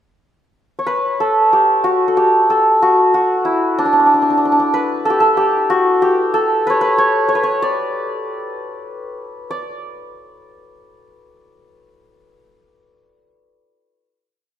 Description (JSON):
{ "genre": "Persian modal ensemble", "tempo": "62 BPM (dotted quarters)", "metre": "6/8", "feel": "straight", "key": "unclear", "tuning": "A4 = 436 Hz", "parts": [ { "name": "santur", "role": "solo", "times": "0.8-10.1 s", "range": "D4 to D5", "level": "-14 LUFS", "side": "equal", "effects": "none" } ], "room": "wet recital hall reverb, RT60 1.6 s", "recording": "none", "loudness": "-13 LUFS", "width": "side -10 dB against mid", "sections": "0.0-1.8 pickup bar; 1.8-9.5 A section; 9.5-11.4 final note", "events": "none", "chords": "none" }